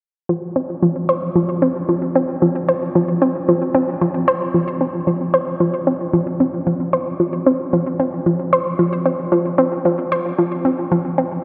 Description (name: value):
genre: ambient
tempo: 113 BPM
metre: 4/4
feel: straight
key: unclear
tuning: A4 = 440 Hz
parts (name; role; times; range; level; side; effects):
- analog pluck; solo; 0.3-11.4 s; F3 to C5; -18 LUFS; equal; chorus, analog delay
room: wet cathedral reverb, RT60 5.0 s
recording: in a vast, echoing space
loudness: -19 LUFS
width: mono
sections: 0.3-4.5 A section; 4.5-11.4 B section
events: none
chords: none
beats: | 0.30 0.83 1.36 1.89 | 2.42 2.95 3.48 4.01 | 4.54 5.08 5.61 6.14 | 6.67 7.20 7.73 8.26 | 8.79 9.32 9.85 10.38 | 10.92